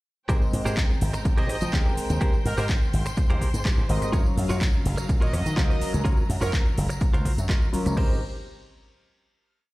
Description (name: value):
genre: filtered disco house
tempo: 125 BPM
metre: 4/4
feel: straight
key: Ab major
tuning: A4 = 440 Hz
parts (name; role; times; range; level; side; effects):
- warm grand piano; accompaniment; 0.3-8.2 s; Gb3 to G5; -31 LUFS; left 1 dB; phaser, vintage 12-bit sampler grit, sidechain pumping
- rich studio string section; sustained chords; 0.3-8.2 s; Gb3 to C6; -38 LUFS; equal; vintage 12-bit sampler grit, sidechain pumping
- direct-recorded clean electric guitar; riff; 0.3-8.2 s; F4 to Eb5; -34 LUFS; right 2 dB; sidechain pumping
- slap bass with an envelope filter; bass; 0.3-8.2 s; Gb1 to F3; -26 LUFS; equal; sidechain pumping
- electronic kick drum; drums; 0.3-8.1 s; none; -23 LUFS; equal; overdrive
- house drum kit; drums; 0.3-8.1 s; crash cymbal, handclaps, hi-hat, rim click, shaker; -34 LUFS; equal; overdrive, sidechain pumping on hats, sidechain pumping on perc, sidechain pumping on cymbals
- tambourine; percussion; 0.3-8.0 s; none; -44 LUFS; right 4 dB; sidechain pumping on perc
- analog synth brass; melody; 1.4-6.8 s; Bb4 to Eb5; -35 LUFS; right 3 dB; chorus, sidechain pumping, digital delay
room: digital ambience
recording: played on a big sound system in a bare room, stone room reverb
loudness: -21 LUFS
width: side -19 dB against mid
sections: 0.3-8.0 drop; 8.0-9.7 final chord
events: drop 0.3-8.0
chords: 0.3 Abmaj9; 4.1 Gbmaj7; 8.0 Abmaj9